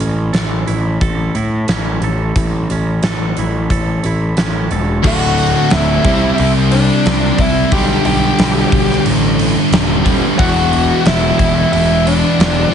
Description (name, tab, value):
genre	quiet-loud alternative rock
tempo	90 BPM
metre	4/4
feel	straight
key	unclear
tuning	A4 = 440 Hz
part	twangy electric guitar	arpeggios	0.0-5.1 s	A2 to A4	-24 LUFS	right 9 dB	none
part	fuzz picked electric bass	bass	0.0-12.6 s	D1 to A2	-18 LUFS	equal	overdrive
part	huge arena drum kit	drums	0.0-12.6 s	crash cymbal, hi-hat, kick drum, snare drum	-18 LUFS	equal	none
part	bluesy overdriven lead guitar	melody	5.0-12.7 s	D4 to G5	-17 LUFS	left 2 dB	distortion
part	crunchy overdriven guitar	riff	5.0-12.7 s	D2 to C4	-18 LUFS	left 10 dB	spring reverb
part	overdriven semi-hollow guitar	riff	5.0-12.7 s	D2 to C4	-18 LUFS	right 12 dB	none
part	scooped high-gain guitar	riff	5.0-12.7 s	D2 to C5	-20 LUFS	equal	distortion
room	little or no reverb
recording	heavily compressed radio sound, multiband compression, nothing above 10.3 kHz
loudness	-12 LUFS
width	side -8 dB against mid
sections	0.0-5.0 A section; 5.0-12.7 B section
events	none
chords	0.0 A; 5.0 D; 6.1 C; 7.7 G/B; 10.4 Em